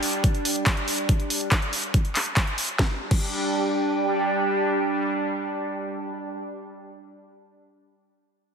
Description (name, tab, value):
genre	psychedelic trance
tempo	141 BPM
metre	4/4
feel	straight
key	unclear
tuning	A4 = 439 Hz
part	bubbling stepped-filter texture	sustained chords	0.0-6.0 s	G3 to D4	-28 LUFS	right 1 dB	chorus, built-in reverb, sidechain pumping
part	drum and bass drum kit	drums	0.0-3.2 s	crash cymbal, handclaps, hi-hat, snare drum	-26 LUFS	equal	overdrive
part	warbly tape-like pad	texture	0.0-6.1 s	D4 to G5	-29 LUFS	right 1 dB	chorus, built-in reverb, sidechain pumping
part	electronic kick drum	drums	0.2-3.2 s	none	-22 LUFS	equal	overdrive
room	wet lush hall reverb, RT60 1.9 s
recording	heavily compressed radio sound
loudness	-22 LUFS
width	side -6 dB against mid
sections	0.0-2.8 A section; 2.8-6.2 B section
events	none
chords	0.0 G5